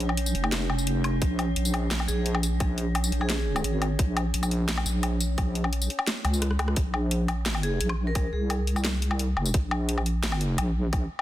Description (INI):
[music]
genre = half-time drum and bass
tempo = 173 BPM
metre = 4/4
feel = half-time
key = Bb minor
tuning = A4 = 441 Hz
[part]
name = deep soft wobble bass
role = bass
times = 0.0-11.1 s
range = F1 to Db2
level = -26 LUFS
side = equal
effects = chorus
[part]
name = drum and bass drum kit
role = drums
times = 0.0-11.2 s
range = hi-hat, rim click, snare drum, tambourine, woodblock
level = -30 LUFS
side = left 2 dB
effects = overdrive, studio reverb
[part]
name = metallic inharmonic drone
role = texture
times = 0.0-6.8 s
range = Db4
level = -36 LUFS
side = right 1 dB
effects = chorus, built-in reverb
[part]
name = electronic kick drum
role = drums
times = 1.2-11.0 s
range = none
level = -26 LUFS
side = equal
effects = overdrive, studio reverb
[part]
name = vibraphone with medium hard mallets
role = melody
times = 2.1-3.7, 7.6-8.6 s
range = Ab4 to Bb4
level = -35 LUFS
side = right 1 dB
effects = digital delay
[sound]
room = digital ambience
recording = dense, heavily limited modern master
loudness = -24 LUFS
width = side -14 dB against mid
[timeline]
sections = 0.0-6.8 A section; 6.8-11.2 A section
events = drop 0.0-6.8, 6.8-11.2; kick drops out 6.4-6.8; drum fill 6.4-6.8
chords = 0.0 Bbm; 6.8 Bb5